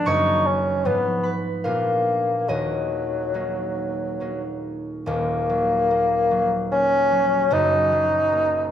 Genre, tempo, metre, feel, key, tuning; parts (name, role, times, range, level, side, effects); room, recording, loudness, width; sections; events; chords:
classical, romantic duo for bassoon and harp; 69-77 BPM; 3/4; rubato; Eb minor; A4 = 442 Hz
mellow bassoon; melody; 0.0-8.7 s; Gb3 to Eb4; -20 LUFS; left 1 dB
concert harp; accompaniment; 0.0-8.7 s; Eb1 to Db6; -26 LUFS; right 2 dB
wet recital hall reverb, RT60 1.4 s; minimal, uncompressed stereo recording; -19 LUFS; side -9 dB against mid
0.0-5.1 A section; 5.1-8.7 B section
0.1 Ebm/Gb; 0.8 Fdim/Ab; 1.6 Bb7b9; 2.5 Ebm; 7.5 Ebm/Gb